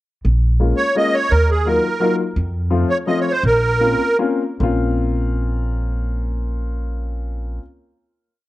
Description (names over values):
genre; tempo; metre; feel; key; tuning
musette waltz; 146-172 BPM; 3/4; straight; Bb minor; A4 = 440 Hz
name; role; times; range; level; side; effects
upright bass; bass; 0.2-7.6 s; Bb1 to F2; -19 LUFS; equal; none
warm upright piano; accompaniment; 0.6-7.6 s; F3 to F4; -22 LUFS; left 4 dB; none
musette accordion; melody; 0.8-4.2 s; Ab4 to Eb5; -17 LUFS; right 2 dB; none
room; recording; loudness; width
moderate spring reverb, RT60 1.4 s, small room ambience; cassette tape; -16 LUFS; side -16 dB against mid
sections
0.2-4.6 A section; 4.6-7.0 final chord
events
slowing down 2.4-4.6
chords
0.2 Bbm7; 1.3 Ebmadd9; 2.4 F; 3.4 Bbmadd9